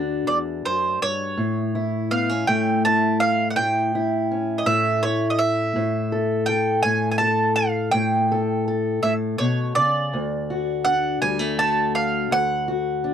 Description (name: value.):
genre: acoustic country blues, solo or duo.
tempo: 55 BPM (dotted quarters).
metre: 12/8.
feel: straight.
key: unclear.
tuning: A4 = 440 Hz.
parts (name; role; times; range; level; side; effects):
mandolin; melody; 0.0-13.1 s; C5 to A5; -22 LUFS; right 3 dB; none.
fingerpicked steel-string acoustic guitar; accompaniment; 0.0-13.1 s; D2 to A4; -23 LUFS; left 2 dB; none.
room: light reverb.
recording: dry, close 1970s-style studio recording.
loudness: -19 LUFS.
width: side -8 dB against mid.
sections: 0.0-13.1 A section.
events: none.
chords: 0.0 D; 1.4 A; 10.1 D.